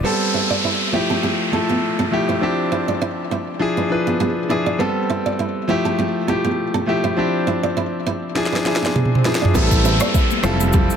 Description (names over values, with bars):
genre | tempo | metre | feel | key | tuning
afrobeats | 101 BPM | 4/4 | swing 55% on 16ths | A minor | A4 = 440 Hz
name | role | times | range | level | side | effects
clear concert grand piano | accompaniment | 0.0-11.0 s | F3 to B4 | -20 LUFS | left 1 dB | none
nylon-string guitar | riff | 0.0-10.9 s | B3 to D5 | -24 LUFS | right 4 dB | ping-pong delay
downlifter and swell | sound effects | 0.0-11.0 s | none | -25 LUFS | equal | none
afro-pop drum kit | drums | 8.4-11.0 s | kick drum, rim click, shaker, snare drum, toms | -18 LUFS | equal | none
fingered electric bass | bass | 9.5-10.9 s | F1 to A1 | -20 LUFS | equal | none
congas | percussion | 10.0-10.9 s | none | -30 LUFS | left 12 dB | none
room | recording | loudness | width
light reverb | dense, heavily limited modern master | -17 LUFS | side -8 dB against mid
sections
0.0-9.5 A section; 9.5-11.0 B section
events
drum fill 8.4-9.5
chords
0.0 Am9; 0.9 Fmaj9; 2.4 Dm11; 3.6 E7b9; 4.8 Am9; 5.7 Fmaj9; 7.2 Dm11; 8.4 E7b9; 9.5 Am9; 10.4 Fmaj9